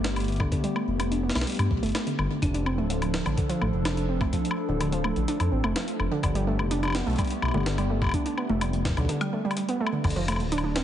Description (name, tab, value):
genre	IDM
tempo	126 BPM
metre	4/4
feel	straight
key	F lydian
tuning	A4 = 440 Hz
part	warbly tape-like pad	sustained chords	0.0-10.0 s	F3 to A4	-32 LUFS	left 1 dB	chorus, built-in reverb
part	warbly dusty pluck	arpeggios	0.0-10.8 s	D3 to D4	-29 LUFS	right 2 dB	chorus, tape echo
part	dark detuned saw bass	bass	0.0-10.8 s	D1 to G2	-28 LUFS	left 1 dB	none
part	jungle sampler-style drum kit	drums	0.0-10.8 s	congas, crash cymbal, hi-hat, snare drum, woodblock	-32 LUFS	left 2 dB	tape echo
part	electronic kick drum	drums	0.4-10.1 s	none	-27 LUFS	equal	none
room	light reverb, digital ambience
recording	heavily compressed radio sound, multiband compression, nothing above 10.3 kHz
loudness	-24 LUFS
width	side -10 dB against mid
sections	0.0-10.0 A section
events	none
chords	0.0 Gadd9; 2.4 F6; 6.2 Gadd9; 10.0 F6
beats	0.04 | 0.52 0.99 1.47 1.95 | 2.42 2.90 3.38 3.85 | 4.33 4.80 5.28 5.76 | 6.23 6.71 7.18 7.66 | 8.14 8.61 9.09 9.57 | 10.04 10.52